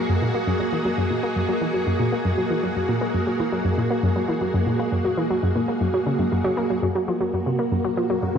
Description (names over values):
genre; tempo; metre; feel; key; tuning
ambient, sequencer-driven space music; 118 BPM; 4/4; straight; F# major; A4 = 443 Hz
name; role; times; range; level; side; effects
string machine, full ensemble; sustained chords; 0.0-8.4 s; A#3 to G#4; -24 LUFS; equal; ensemble chorus
analog pluck; riff; 0.0-8.4 s; F#2 to A#3; -23 LUFS; equal; chorus, ping-pong delay
wind-like tuned noise texture; texture; 0.0-6.8 s; D#5; -39 LUFS; right 2 dB; built-in reverb
room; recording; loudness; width
moderate plate reverb, RT60 2.9 s; dark, warm production; -20 LUFS; side -7 dB against mid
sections
0.0-6.8 A section; 6.8-8.4 B section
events
filter sweep on synth arpeggio sound 0.0-6.8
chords
0.0 F#add9; 6.8 Gbadd9